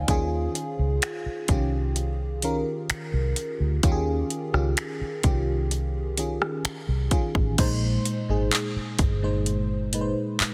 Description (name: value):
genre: contemporary R&B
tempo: 64 BPM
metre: 4/4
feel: straight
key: unclear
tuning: A4 = 440 Hz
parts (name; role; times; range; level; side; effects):
- FM electric piano with soft pad layer; accompaniment; 0.0-10.5 s; Bb2 to Ab5; -31 LUFS; equal; chorus, tremolo
- vintage muted fingered electric bass; bass; 0.0-10.4 s; G1 to Eb2; -29 LUFS; equal; none
- trap drum kit; drums; 0.1-10.5 s; crash cymbal, finger snaps, handclaps, hi-hat, kick drum, rim click; -28 LUFS; equal; soft clipping on snare
room: light reverb, digital ambience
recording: dense, heavily limited modern master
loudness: -26 LUFS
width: mono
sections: 0.0-7.6 A section; 7.6-10.5 B section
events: none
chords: 0.1 Eb9sus4; 7.6 Bb9sus4